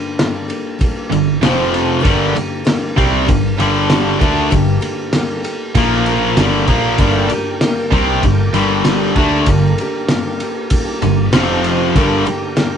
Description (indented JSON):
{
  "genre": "classic rock",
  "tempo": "97 BPM",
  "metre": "4/4",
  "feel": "straight",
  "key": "G minor",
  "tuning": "A4 = 439 Hz",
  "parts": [
    { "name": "picked steel-string acoustic guitar", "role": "accompaniment", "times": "0.0-12.8 s", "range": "G2 to F5", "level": "-22 LUFS", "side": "left 2 dB", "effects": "none" },
    { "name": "cloth-damped thuddy drum kit", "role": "drums", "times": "0.2-12.7 s", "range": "kick drum, ride cymbal, snare drum", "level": "-18 LUFS", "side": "equal", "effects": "none" },
    { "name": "cranked stack guitar", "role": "riff", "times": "1.1-12.3 s", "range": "F2 to D4", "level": "-18 LUFS", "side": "right 6 dB", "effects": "overdrive" },
    { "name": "distorted electric guitar", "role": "riff", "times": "1.1-12.3 s", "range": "F2 to D4", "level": "-17 LUFS", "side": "left 6 dB", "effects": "overdrive" },
    { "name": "picked electric bass", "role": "bass", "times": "1.1-12.3 s", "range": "F1 to D2", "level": "-21 LUFS", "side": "equal", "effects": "none" },
    { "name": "tonewheel organ", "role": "sustained chords", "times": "7.0-12.8 s", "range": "D4 to G5", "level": "-28 LUFS", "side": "right 2 dB", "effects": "overdrive, chorus vibrato, slow rotary speaker" }
  ],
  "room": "moderate small room reverb, RT60 0.5 s",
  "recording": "band playing live in one room, nothing above 10.9 kHz",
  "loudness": "-13 LUFS",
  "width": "side -8 dB against mid",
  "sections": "0.0-12.8 A section",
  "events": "none",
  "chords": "0.0 Gm; 1.4 F5; 2.1 Gm; 5.8 Bb5; 6.4 Gm; 11.3 F5; 11.9 Gm"
}